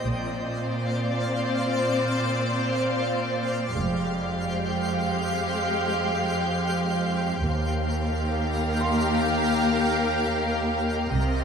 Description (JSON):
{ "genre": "cinematic", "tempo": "65 BPM", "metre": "4/4", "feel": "straight", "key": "unclear", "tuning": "A4 = 440 Hz", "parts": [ { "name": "warm studio violin section", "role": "second line", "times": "0.0-11.4 s", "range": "G4 to C5", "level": "-30 LUFS", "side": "left 1 dB", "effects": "none" }, { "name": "dark studio double bass section", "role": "bass", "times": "0.0-11.4 s", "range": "F1 to Eb2", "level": "-29 LUFS", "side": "right 2 dB", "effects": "none" }, { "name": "warm concert grand piano", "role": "texture", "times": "0.0-0.1, 8.8-11.4 s", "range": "C6", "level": "-39 LUFS", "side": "right 2 dB", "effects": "none" }, { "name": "warm studio violin section", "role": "melody", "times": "0.1-11.4 s", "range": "D5 to F5", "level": "-33 LUFS", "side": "left 1 dB", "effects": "none" }, { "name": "rich studio viola section", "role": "accompaniment", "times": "0.1-11.4 s", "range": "Ab3 to C4", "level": "-30 LUFS", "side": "left 2 dB", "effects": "none" }, { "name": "twinkling granular texture", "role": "sustained chords", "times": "0.1-11.4 s", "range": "Bb4 to G5", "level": "-31 LUFS", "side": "equal", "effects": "built-in reverb" }, { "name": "rich studio cello section", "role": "bass", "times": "0.1-11.4 s", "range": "Eb2 to C3", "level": "-29 LUFS", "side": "right 2 dB", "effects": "none" } ], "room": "moderate scoring stage reverb, RT60 2.0 s", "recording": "none", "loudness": "-23 LUFS", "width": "side -6 dB against mid", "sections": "0.0-11.4 A section", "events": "none", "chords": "0.1 Bbadd9; 3.7 Fmadd9; 7.4 Ebadd9" }